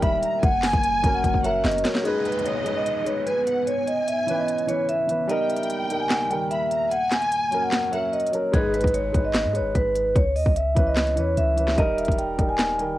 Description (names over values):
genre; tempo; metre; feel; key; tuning
hip hop, trap; 148 BPM; 4/4; half-time; G# minor; A4 = 440 Hz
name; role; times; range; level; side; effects
vibraphone with medium mallets; melody; 0.0-13.0 s; G#4 to G#5; -23 LUFS; equal; low-pass filter, cassette tape
warm studio violin section; second line; 0.0-8.1 s; D#5 to B5; -34 LUFS; equal; cassette tape, tape echo
dark concert grand piano; accompaniment; 0.0-13.0 s; D#3 to B4; -29 LUFS; equal; low-pass filter, cassette tape
deep dark ambient pad; sustained chords; 0.0-8.5 s; C#2 to A#4; -34 LUFS; left 1 dB; chorus, built-in reverb, cassette tape
clean 808-style bass; bass; 0.0-1.8, 8.5-13.0 s; D#1 to G#2; -27 LUFS; equal; none
trap drum kit; drums; 0.0-12.9 s; handclaps, hi-hat, kick drum, snare drum; -24 LUFS; equal; cassette tape
downlifter and impact; sound effects; 2.0-5.3, 8.5-10.2 s; none; -38 LUFS; equal; none
room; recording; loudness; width
light reverb; home recording on cassette; -20 LUFS; side -15 dB against mid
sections
0.0-2.0 A section; 2.0-8.5 B section; 8.5-13.0 C section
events
drum fill 1.2-2.0; impact 8.5-10.2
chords
0.4 F#; 2.0 G#m; 3.7 C#m7; 5.3 D#; 6.9 F#; 8.5 G#m; 10.2 C#m7; 11.8 D#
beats
0.02 | 0.43 0.83 1.24 1.65 | 2.05 2.46 2.86 3.27 | 3.67 4.08 4.48 4.89 | 5.29 5.70 6.10 6.51 | 6.92 7.32 7.73 8.13 | 8.54 8.94 9.35 9.75 | 10.16 10.56 10.97 11.37 | 11.78 12.19 12.59